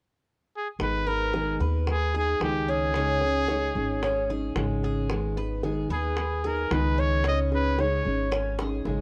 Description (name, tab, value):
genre	latin, Cuban son and guajira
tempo	112 BPM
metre	4/4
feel	straight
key	G# minor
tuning	A4 = 440 Hz
part	bright trumpet	melody	0.6-8.3 s	G4 to D#5	-31 LUFS	equal	none
part	nylon-string guitar	accompaniment	0.8-9.0 s	C#3 to G#4	-33 LUFS	equal	none
part	upright bass	bass	0.8-9.0 s	G#1 to D#2	-31 LUFS	equal	none
part	bongos	percussion	0.8-9.0 s	none	-38 LUFS	equal	none
part	Cuban tres	arpeggios	1.1-9.0 s	C#4 to C#5	-34 LUFS	equal	none
room	light reverb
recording	dark, warm production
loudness	-26 LUFS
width	mono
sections	0.8-9.0 A section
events	drum fill 8.6-9.0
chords	0.0 N.C.; 0.8 G#m; 2.9 C#sus2; 5.1 G#m; 7.3 C#sus2